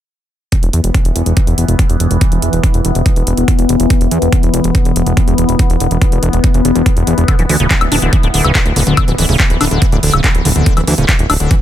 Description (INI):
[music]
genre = psychedelic trance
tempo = 142 BPM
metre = 4/4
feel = straight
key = unclear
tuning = A4 = 440 Hz
[part]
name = evolving wavetable pad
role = sustained chords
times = 0.5-11.6 s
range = E3 to B3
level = -18 LUFS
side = left 3 dB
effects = phaser, built-in reverb, sidechain pumping
[part]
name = drum and bass drum kit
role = drums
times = 0.5-11.6 s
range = handclaps, hi-hat, woodblock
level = -18 LUFS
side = left 1 dB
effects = overdrive
[part]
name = electronic kick drum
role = drums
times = 0.5-11.6 s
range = none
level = -12 LUFS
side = equal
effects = overdrive
[part]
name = fat analog bass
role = bass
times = 0.6-11.5 s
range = D1 to E2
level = -14 LUFS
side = equal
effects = none
[part]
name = liquid acid bass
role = riff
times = 7.3-11.6 s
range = C#3 to D4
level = -16 LUFS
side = moving between left 4 dB and right 3 dB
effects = chorus, auto-pan, sidechain pumping, ping-pong delay
[sound]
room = little or no reverb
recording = none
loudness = -10 LUFS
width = side -11 dB against mid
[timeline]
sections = 0.5-11.6 A section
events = none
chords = 0.5 E5; 7.3 Bmadd11/D